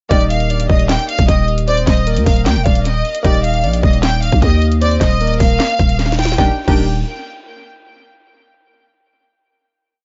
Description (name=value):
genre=hip hop, trap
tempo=153 BPM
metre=4/4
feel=half-time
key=Eb major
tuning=A4 = 437 Hz
part: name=clear studio violin section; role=melody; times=0.1-6.9 s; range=D5 to G5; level=-22 LUFS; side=equal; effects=tape echo
part: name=soft octave-layered synth lead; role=second line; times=0.1-6.9 s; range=Bb4 to Eb5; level=-28 LUFS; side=equal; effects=chorus, tape echo
part: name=glassy digital keys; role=accompaniment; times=0.1-6.9 s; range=Bb3 to G4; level=-28 LUFS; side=equal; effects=chorus, phaser
part: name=growling 808-style bass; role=bass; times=0.1-7.0 s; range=Eb1 to Eb2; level=-18 LUFS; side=equal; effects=none
part: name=trap drum kit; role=drums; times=0.1-6.8 s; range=crash cymbal, handclaps, hi-hat, kick drum, snare drum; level=-19 LUFS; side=equal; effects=tape echo
room=digital ambience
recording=echo-heavy mix, nothing above 7.6 kHz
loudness=-14 LUFS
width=mono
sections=0.1-6.4 hook; 6.4-8.0 final chord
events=drum fill 6.0-6.4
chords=0.1 Ebmaj7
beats=| 0.11 0.50 0.89 1.28 | 1.68 2.07 2.46 2.85 | 3.25 3.64 4.03 4.42 | 4.81 5.21 5.60 5.99 | 6.38 6.78